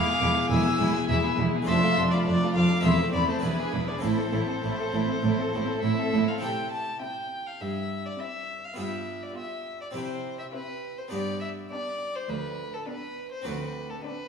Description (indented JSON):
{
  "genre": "classical, baroque-style concerto movement with solo episodes",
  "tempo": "102 BPM",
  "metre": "4/4",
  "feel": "straight",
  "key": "A minor, C major from 6.4 s",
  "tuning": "A4 = 440 Hz",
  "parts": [
    { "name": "warm chamber violin section", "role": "melody", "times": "0.0-14.3 s", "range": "F#4 to E6", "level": "-33 LUFS", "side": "left 4 dB", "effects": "none" },
    { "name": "warm violin", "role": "melody", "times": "0.0-14.3 s", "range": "A4 to A5", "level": "-32 LUFS", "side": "left 2 dB", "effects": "none" },
    { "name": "warm chamber violin section", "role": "second line", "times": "0.0-14.3 s", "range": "C4 to A4", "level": "-34 LUFS", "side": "left 1 dB", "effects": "none" },
    { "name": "dark chamber viola section", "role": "accompaniment", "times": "0.0-14.3 s", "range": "F3 to D4", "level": "-32 LUFS", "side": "right 2 dB", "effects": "none" },
    { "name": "harpsichord", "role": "accompaniment", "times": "0.0-14.3 s", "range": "D2 to D5", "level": "-34 LUFS", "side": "equal", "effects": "none" },
    { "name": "warm chamber cello section", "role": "bass", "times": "0.2-13.9 s", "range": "D2 to C3", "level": "-29 LUFS", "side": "right 2 dB", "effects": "none" },
    { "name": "warm studio double bass section", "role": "bass", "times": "0.2-6.2 s", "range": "E1 to A1", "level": "-32 LUFS", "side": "right 2 dB", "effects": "none" }
  ],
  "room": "wet recital hall reverb, RT60 1.8 s",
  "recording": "studio reverb",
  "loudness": "-25 LUFS",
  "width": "side -6 dB against mid",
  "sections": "0.0-6.4 A section; 6.4-14.3 B section",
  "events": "none",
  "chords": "0.0 E; 1.7 Dm/F; 2.8 Am/E; 3.4 E7; 4.0 Am; 6.4 C; 8.8 G7; 10.0 C; 11.1 G; 13.5 D7",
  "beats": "0.51 1.09 | 1.67 2.26 2.84 3.43 | 4.03 4.63 5.23 5.83 | 6.42 7.02 7.61 8.20 | 8.78 9.37 9.96 10.54 | 11.13 11.71 12.30 12.88 | 13.46 14.05"
}